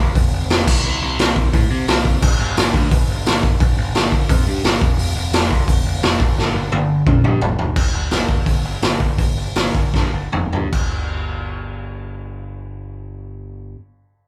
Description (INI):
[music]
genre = punk rock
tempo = 146-174 BPM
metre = 4/4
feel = straight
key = unclear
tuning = A4 = 436 Hz
[part]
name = growling picked electric bass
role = bass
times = 0.0-13.8 s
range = F1 to C3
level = -26 LUFS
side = equal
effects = overdrive
[part]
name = raw garage drum kit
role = drums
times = 0.2-10.8 s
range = crash cymbal, hi-hat, kick drum, snare drum, toms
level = -19 LUFS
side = equal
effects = none
[sound]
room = little or no reverb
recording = band playing live in one room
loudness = -18 LUFS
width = mono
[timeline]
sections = 0.0-7.8 A section; 7.8-10.7 B section; 10.7-14.0 C section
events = drum fill 6.4-7.8, 9.9-10.7; slowing down 7.8-10.7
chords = none